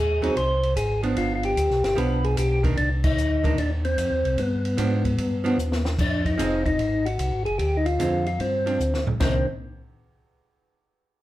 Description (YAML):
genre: soul jazz organ trio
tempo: 149 BPM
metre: 4/4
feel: swing 67% on 8ths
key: C minor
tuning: A4 = 443 Hz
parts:
  - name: percussive tonewheel organ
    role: melody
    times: 0.0-9.5 s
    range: B3 to C5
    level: -25 LUFS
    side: left 1 dB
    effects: slow rotary speaker
  - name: mellow tonewheel organ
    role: bass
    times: 0.0-9.5 s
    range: F1 to Ab2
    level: -26 LUFS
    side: equal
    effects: slow rotary speaker
  - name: archtop guitar, miked and amplified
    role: accompaniment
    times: 0.2-9.5 s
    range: D3 to Ab4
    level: -28 LUFS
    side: right 4 dB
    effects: none
  - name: compact cocktail drum kit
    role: drums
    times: 0.2-9.3 s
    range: crash cymbal, hi-hat, kick drum, ride cymbal, snare drum, toms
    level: -30 LUFS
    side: equal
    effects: none
room: wet club reverb, RT60 0.8 s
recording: heard from further back in the room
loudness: -21 LUFS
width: side -15 dB against mid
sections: 0.0-6.0 A section; 6.0-9.2 B section; 9.2-10.8 C section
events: band accent 3.0; drum fill 5.6-6.0, 8.8-9.2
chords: 0.0 Ab; 1.2 G7; 2.8 Cmadd9; 4.4 G7; 6.0 Fm7; 6.8 Ab7; 7.6 Dm7b5; 8.4 G7sus4; 9.2 Cm9